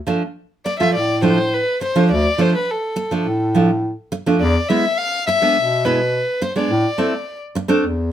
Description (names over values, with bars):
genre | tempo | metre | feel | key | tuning
klezmer | 104 BPM | 4/4 | straight | D dorian sharp4 | A4 = 442 Hz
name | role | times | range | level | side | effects
nylon-string guitar | accompaniment | 0.1-7.8 s | F3 to F4 | -18 LUFS | right 2 dB | none
dark violin | melody | 0.7-7.4 s | A4 to F5 | -19 LUFS | left 2 dB | none
warm bass clarinet | bass | 0.9-8.1 s | D2 to B2 | -19 LUFS | equal | none
room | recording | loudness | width
light reverb | minimal, uncompressed stereo recording | -16 LUFS | side -10 dB against mid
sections
0.0-8.1 A section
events
none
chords
0.0 Dm; 4.4 E7; 6.7 Am